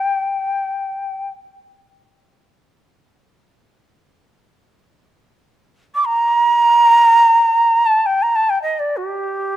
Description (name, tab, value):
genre	japanese traditional, Japanese chamber music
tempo	free time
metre	none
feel	none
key	G hirajoshi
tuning	A4 = 440 Hz
part	breathy shakuhachi	solo	0.0-9.6 s	G4 to D6	-13 LUFS	right 1 dB	none
room	light reverb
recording	close, detailed microphones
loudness	-13 LUFS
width	side -13 dB against mid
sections	0.0-9.6 A section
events	none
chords	none